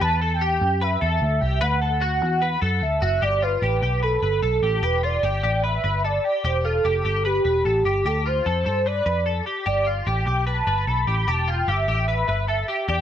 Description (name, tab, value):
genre	indie pop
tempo	149 BPM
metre	4/4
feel	straight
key	G mixolydian from 3.2 s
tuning	A4 = 439 Hz
part	warm velvety synth lead	melody	0.0-13.0 s	G4 to B5	-24 LUFS	right 2 dB	chorus, slapback echo
part	twelve-string electric guitar	arpeggios	0.0-13.0 s	F4 to B4	-25 LUFS	left 3 dB	ensemble chorus
part	vintage muted picked electric bass	bass	0.0-13.0 s	E1 to G2	-24 LUFS	equal	none
room	moderate large studio reverb, RT60 1.2 s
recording	none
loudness	-20 LUFS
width	side -10 dB against mid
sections	0.0-3.2 A section; 3.2-13.0 B section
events	none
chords	0.0 Em; 1.6 D; 3.2 Gadd9; 4.8 Emadd11; 8.1 Dm; 9.7 Gadd9; 11.3 Em